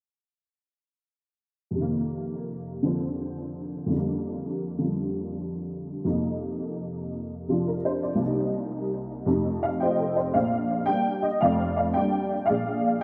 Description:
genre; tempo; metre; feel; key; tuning
solo jazz; 112 BPM; 4/4; swing 68% on 8ths; Bb major; A4 = 439 Hz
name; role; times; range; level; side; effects
honky-tonk upright piano; solo; 1.7-13.0 s; F1 to G5; -27 LUFS; equal; ensemble chorus, analog delay
room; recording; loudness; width
wet plate reverb, RT60 2.4 s; dreamy mix soaked in reverb; -27 LUFS; mono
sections
1.8-10.3 A section; 10.3-13.0 B section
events
none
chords
1.8 F7sus4; 3.9 Bb6/F; 6.0 F7sus4; 8.2 Cm7; 9.3 F7; 10.3 Bb6; 12.5 Bb7

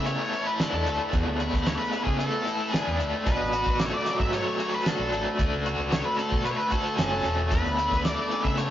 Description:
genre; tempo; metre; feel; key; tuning
psychedelic rock; 113 BPM; 4/4; straight; unclear; A4 = 436 Hz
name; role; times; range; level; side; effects
octave-fuzz lead guitar; melody; 0.0-8.7 s; G#4 to E5; -30 LUFS; left 1 dB; distortion, analog delay
combo organ; sustained chords; 0.0-8.7 s; D4 to C#6; -43 LUFS; right 2 dB; none
raw garage guitar; riff; 0.0-8.7 s; E2 to F#4; -27 LUFS; left 1 dB; overdrive, tremolo
fingered electric bass; bass; 0.0-8.7 s; E1 to C#3; -32 LUFS; equal; none
cloth-damped thuddy drum kit; drums; 0.1-8.7 s; hi-hat, kick drum, snare drum; -29 LUFS; equal; none
room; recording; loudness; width
moderate studio ambience, RT60 0.5 s; rough rehearsal-room recording, nothing above 7.5 kHz; -24 LUFS; side -12 dB against mid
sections
0.0-8.7 A section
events
none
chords
0.0 E7sus4; 3.3 Bm7; 5.4 Dmaj7; 7.5 E7sus4

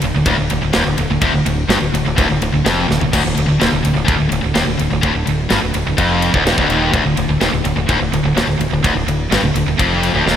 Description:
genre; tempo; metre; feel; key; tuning
heavy metal; 126 BPM; 4/4; straight; D minor; A4 = 440 Hz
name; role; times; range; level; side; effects
cranked stack guitar; riff; 0.0-10.4 s; D2 to G2; -21 LUFS; right 1 dB; overdrive
distorted electric guitar; riff; 0.0-10.4 s; D2 to G2; -18 LUFS; left 6 dB; overdrive
heavy high-gain guitar; riff; 0.0-10.4 s; D2 to G2; -21 LUFS; right 8 dB; distortion
growling fingered electric bass; bass; 0.0-10.4 s; D1 to G1; -21 LUFS; equal; overdrive
tight metal drum kit; drums; 0.0-10.4 s; crash cymbal, kick drum, ride cymbal, snare drum, toms; -21 LUFS; right 1 dB; gated reverb
room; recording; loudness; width
moderate lush hall reverb, RT60 1.9 s, studio ambience; bright 1980s-style digital production; -13 LUFS; side -9 dB against mid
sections
0.0-10.4 A section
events
drum fill 2.9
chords
0.0 Dm

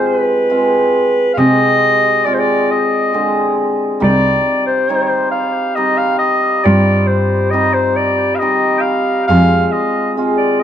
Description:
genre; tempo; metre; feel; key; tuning
klezmer; 68 BPM; 3/4; straight; unclear; A4 = 440 Hz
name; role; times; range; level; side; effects
warm clarinet; melody; 0.0-10.6 s; B4 to G5; -15 LUFS; equal; analog delay
hammered dulcimer; accompaniment; 0.0-10.6 s; D3 to G4; -17 LUFS; equal; none
clear cello; bass; 1.4-9.6 s; C2 to C3; -15 LUFS; equal; none
room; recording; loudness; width
moderate studio reverb, RT60 0.6 s; dark, warm production; -12 LUFS; side -9 dB against mid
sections
0.0-10.6 A section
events
none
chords
0.0 Fm; 4.0 Cm; 9.3 Fm

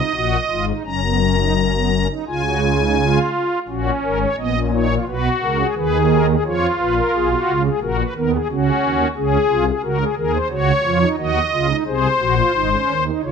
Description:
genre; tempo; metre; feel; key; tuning
classical, baroque-style 3-part fugue for pipe organ; 88 BPM; 4/4; straight; F# major; A4 = 440 Hz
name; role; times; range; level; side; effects
pipe organ, strings celeste; solo; 0.0-13.3 s; F#1 to A#5; -16 LUFS; equal; none
room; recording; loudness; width
wet stone room reverb, RT60 1.0 s; none; -16 LUFS; side -6 dB against mid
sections
0.0-3.7 A section; 3.7-13.3 B section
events
none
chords
0.0 G#7(no3); 0.9 C#sus4/F#; 2.3 C#; 3.7 F#; 5.1 G#m7/B; 6.5 C#7; 7.8 F#/A#; 9.2 C#5; 10.5 D#m7/C#; 11.9 G#

